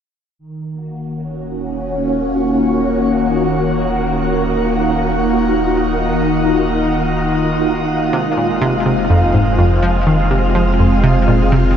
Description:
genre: ambient.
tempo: 124 BPM.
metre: 4/4.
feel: straight.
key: Eb dorian.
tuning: A4 = 440 Hz.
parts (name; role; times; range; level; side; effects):
phased string machine; sustained chords; 0.4-11.8 s; Eb3 to Gb4; -15 LUFS; equal; ensemble chorus, phaser.
warm sub bass; bass; 0.4-11.8 s; Eb1 to F1; -22 LUFS; equal; none.
analog pluck; riff; 8.1-11.6 s; F2 to F3; -15 LUFS; equal; chorus, ping-pong delay.
room: wet shimmer reverb, RT60 8.8 s.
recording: nothing above 7.7 kHz.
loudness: -13 LUFS.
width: side -8 dB against mid.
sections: 0.4-11.8 A section.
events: fade-in on sub bass 0.4-11.8; filter sweep on string machine 0.4-11.8.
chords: 0.4 Ebm7; 8.1 Fm.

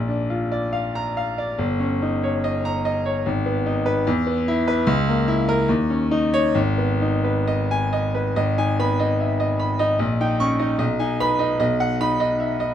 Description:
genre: classical, romantic character piece for solo piano.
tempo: 66-77 BPM.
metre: 2/4.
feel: rubato.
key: G# minor.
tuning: A4 = 437 Hz.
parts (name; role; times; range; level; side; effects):
bright grand piano; solo; 0.0-12.7 s; G1 to C#6; -19 LUFS; equal; none.
room: light reverb.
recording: close, detailed microphones.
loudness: -19 LUFS.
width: side -10 dB against mid.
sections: 0.0-8.4 A section; 8.4-12.7 B section.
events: none.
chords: 0.0 Bb; 1.6 D#7/G; 3.3 G#m; 4.1 E5; 4.9 A#dim/C#; 5.7 C#sus2/D#; 6.6 G#m; 10.0 D#7/A#; 10.8 G#m/B; 11.6 B.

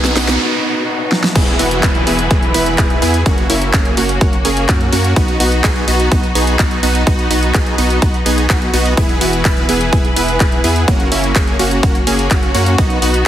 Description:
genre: EDM, festival progressive house.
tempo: 126 BPM.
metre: 4/4.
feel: straight.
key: B major.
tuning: A4 = 440 Hz.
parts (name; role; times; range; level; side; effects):
felt-muted upright piano; accompaniment; 0.0-1.4 s; B3 to B4; -25 LUFS; left 4 dB; vintage 12-bit sampler grit, sidechain pumping, digital delay.
warm symphonic string section; sustained chords; 0.0-13.3 s; E3 to B4; -21 LUFS; left 1 dB; sidechain pumping.
supersaw stab; riff; 0.0-13.2 s; A#3 to B4; -17 LUFS; right 1 dB; sidechain pumping, digital delay.
saturated sub bass; bass; 0.0-13.2 s; E1 to F#2; -19 LUFS; equal; sidechain pumping.
big-room dance drum kit; drums; 0.0-13.2 s; crash cymbal, handclaps, hi-hat, snare drum; -20 LUFS; equal; overdrive, studio reverb.
riser, noise sweep and downlifter; sound effects; 0.0-5.2 s; none; -23 LUFS; right 1 dB; none.
electronic kick drum; drums; 1.4-12.9 s; none; -14 LUFS; equal; overdrive, studio reverb.
room: moderate lush hall reverb, RT60 1.8 s, digital ambience.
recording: heavily compressed radio sound, multiband compression.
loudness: -11 LUFS.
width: side -11 dB against mid.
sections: 0.0-1.4 A section; 1.4-13.3 B section.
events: build-up 0.0-1.4; drum fill 0.0-0.4, 1.1; riser 0.0-0.4; noise sweep 0.0-1.4; break 0.4-1.4; drop 1.4-13.3.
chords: 0.0 B; 1.4 E; 3.3 F#; 5.2 B; 9.0 E; 10.9 F#.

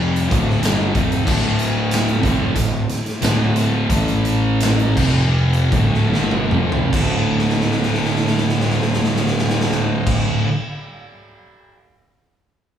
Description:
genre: stoner and doom metal.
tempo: 72-94 BPM.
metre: 4/4.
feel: straight.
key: D minor.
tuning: A4 = 439 Hz.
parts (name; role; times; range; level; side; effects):
string machine, cellos; sustained chords; 0.0-10.2 s; D3 to A4; -30 LUFS; right 1 dB; none.
thick fuzz guitar; riff; 0.0-10.5 s; D2 to A3; -21 LUFS; left 6 dB; distortion.
thick fuzz guitar; riff; 0.0-10.5 s; D2 to A3; -22 LUFS; right 6 dB; distortion.
fuzz fingered electric bass; bass; 0.0-10.2 s; D1 to A1; -23 LUFS; right 1 dB; overdrive.
big rock drum kit; drums; 0.2-11.7 s; crash cymbal, hi-hat, kick drum, snare drum, toms; -21 LUFS; equal; none.
room: light reverb.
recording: band playing live in one room, studio reverb.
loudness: -15 LUFS.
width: side -9 dB against mid.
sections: 0.0-6.9 A section; 6.9-10.3 B section.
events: slowing down 1.3-6.9; drum fill 6.1-6.9, 7.4-10.1.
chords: 0.3 Dm; 3.9 A5; 5.0 F5; 5.7 Dm; 6.9 D5.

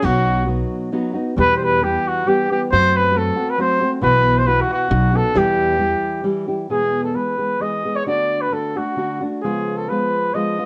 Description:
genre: mexican folk, mariachi.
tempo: 134 BPM.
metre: 3/4.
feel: straight.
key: E minor, E major from 6.7 s.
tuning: A4 = 441 Hz.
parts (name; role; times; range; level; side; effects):
mellow trumpet; melody; 0.0-10.7 s; F#4 to D#5; -21 LUFS; equal; plate reverb.
nylon-string guitar; accompaniment; 0.0-10.7 s; E2 to G#4; -24 LUFS; equal; plate reverb.
upright bass; bass; 0.0-5.9 s; B1 to F#2; -24 LUFS; equal; none.
room: wet studio ambience, RT60 0.5 s.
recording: worn, warbling old tape, cassette tape, warbly pitch drift.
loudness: -19 LUFS.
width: mono.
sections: 0.0-6.7 A section; 6.7-10.7 B section.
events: none.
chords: 0.0 B; 1.4 Em; 2.7 F#dim; 4.0 Bsus4; 4.9 B; 5.3 Em; 6.7 E; 8.1 D; 9.4 C#7.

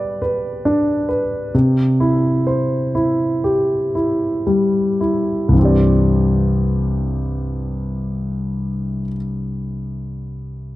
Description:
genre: pop.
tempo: 54-70 BPM.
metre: 4/4.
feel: straight.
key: C major.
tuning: A4 = 440 Hz.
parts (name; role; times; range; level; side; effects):
warm concert grand piano; accompaniment; 0.0-10.8 s; C2 to D5; -16 LUFS; equal; none.
room: moderate plate reverb, RT60 2.7 s.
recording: dark, warm production.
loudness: -16 LUFS.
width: side -16 dB against mid.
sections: 0.0-5.6 A section; 5.6-10.0 B section.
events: slowing down 0.0-5.6.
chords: 0.0 G; 1.5 C; 5.6 Cadd9.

